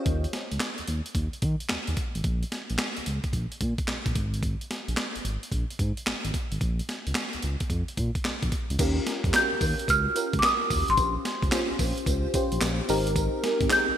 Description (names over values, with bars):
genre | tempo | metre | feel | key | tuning
R&B, new jack swing | 110 BPM | 4/4 | swing 66% on 16ths | unclear | A4 = 440 Hz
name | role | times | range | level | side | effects
FM electric piano with soft pad layer | accompaniment | 0.0-0.2, 8.8-14.0 s | C4 to Db5 | -29 LUFS | equal | chorus, phaser
smooth gliding synth bass | bass | 0.1-13.9 s | Ab1 to Eb3 | -29 LUFS | equal | none
breakbeat sampler-style drum kit | drums | 0.1-13.9 s | crash cymbal, handclaps, hi-hat, kick drum, snare drum, tambourine | -28 LUFS | equal | gated reverb
cowbell | percussion | 8.8-13.9 s | none | -42 LUFS | left 5 dB | none
marimba with medium hard mallets | melody | 9.4-14.0 s | C6 to G6 | -24 LUFS | equal | digital delay
room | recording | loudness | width
light reverb | bright 1980s-style digital production | -25 LUFS | side -10 dB against mid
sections
0.1-8.8 A section; 8.8-14.0 B section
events
none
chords
0.1 Absus4 (rootless); 2.2 N.C.; 6.6 Bbm; 8.8 Eb7; 11.0 Bbm69; 12.9 Abmaj9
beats
| 0.06 0.61 1.15 1.70 | 2.25 2.79 3.33 3.88 | 4.43 4.97 5.52 6.06 | 6.61 7.15 7.70 8.24 | 8.79 9.34 9.88 10.43 | 10.97 11.52 12.06 12.61 | 13.15 13.70